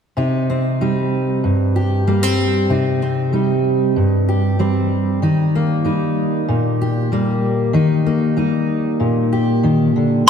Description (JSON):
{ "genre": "folk", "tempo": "95 BPM", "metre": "4/4", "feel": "straight", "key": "C minor", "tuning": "A4 = 440 Hz", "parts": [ { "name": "fingerpicked steel-string acoustic guitar", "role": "accompaniment", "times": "0.2-10.3 s", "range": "G2 to G4", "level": "-15 LUFS", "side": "equal", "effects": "lush chorus" } ], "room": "wet lush hall reverb, RT60 2.5 s", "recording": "dreamy mix soaked in reverb", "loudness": "-15 LUFS", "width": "side -7 dB against mid", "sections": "0.2-10.3 A section", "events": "none", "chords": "0.2 Cm; 5.2 Eb", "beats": "| 0.18 0.81 1.44 2.07 | 2.70 3.33 3.96 4.59 | 5.22 5.86 6.49 7.12 | 7.75 8.38 9.01 9.64 | 10.28" }